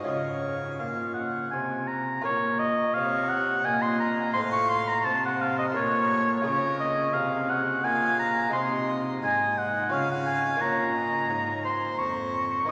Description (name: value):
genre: classical, baroque-style sonata movement with continuo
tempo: 86 BPM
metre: 3/4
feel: straight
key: Bb minor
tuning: A4 = 440 Hz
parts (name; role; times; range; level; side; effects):
- rich violin; second line; 0.0-12.7 s; Ab4 to F5; -39 LUFS; equal; none
- lute; accompaniment; 0.0-12.7 s; F2 to Db5; -37 LUFS; equal; none
- dark cello; bass; 0.0-12.7 s; F2 to Db3; -35 LUFS; equal; none
- warm oboe; melody; 0.1-12.7 s; Db5 to Db6; -28 LUFS; equal; none
room: wet cathedral reverb, RT60 5.3 s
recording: none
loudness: -26 LUFS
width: mono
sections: 0.0-2.2 A section; 2.2-12.7 A section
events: none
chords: 0.1 Db; 2.2 Bbm; 4.3 F/A; 5.8 Bbm; 6.4 Db; 8.5 Ab/C; 9.9 Db; 10.6 Bbm